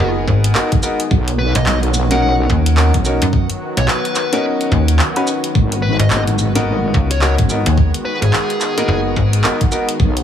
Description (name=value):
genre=glitch hop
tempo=108 BPM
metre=4/4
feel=swing 61% on 16ths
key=G# minor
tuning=A4 = 439 Hz
part: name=dark smooth lead guitar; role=melody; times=0.0-9.0 s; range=G#4 to F#5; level=-24 LUFS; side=left 2 dB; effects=overdrive, vintage 12-bit sampler grit, digital delay
part: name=warm analog pad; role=sustained chords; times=0.0-10.2 s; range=D#3 to G#4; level=-24 LUFS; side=equal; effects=chorus, sidechain pumping
part: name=bright grand piano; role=stabs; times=0.0-9.9 s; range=B3 to B4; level=-21 LUFS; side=left 1 dB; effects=sidechain pumping, digital delay
part: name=slap-like FM bass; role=bass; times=0.0-9.4 s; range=F#1 to F#2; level=-14 LUFS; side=equal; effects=tube saturation
part: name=electronic kick drum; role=drums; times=0.3-10.1 s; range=none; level=-16 LUFS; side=equal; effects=overdrive
part: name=dubstep drum kit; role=drums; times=0.4-10.2 s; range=handclaps, hi-hat, shaker, snare drum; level=-21 LUFS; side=equal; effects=overdrive
part: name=wobble bass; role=bass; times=1.1-10.2 s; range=G#1 to B1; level=-17 LUFS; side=equal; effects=chorus
room=light reverb, digital ambience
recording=heavily compressed radio sound, multiband compression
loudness=-13 LUFS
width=side -9 dB against mid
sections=0.0-10.2 A section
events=none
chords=0.0 G#m7; 1.1 Bmaj7; 5.6 G#m7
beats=0.00 0.56 | 1.11 1.67 2.22 2.78 | 3.33 3.89 4.44 5.00 | 5.55 6.11 6.67 7.22 | 7.78 8.33 8.89 9.44 | 10.00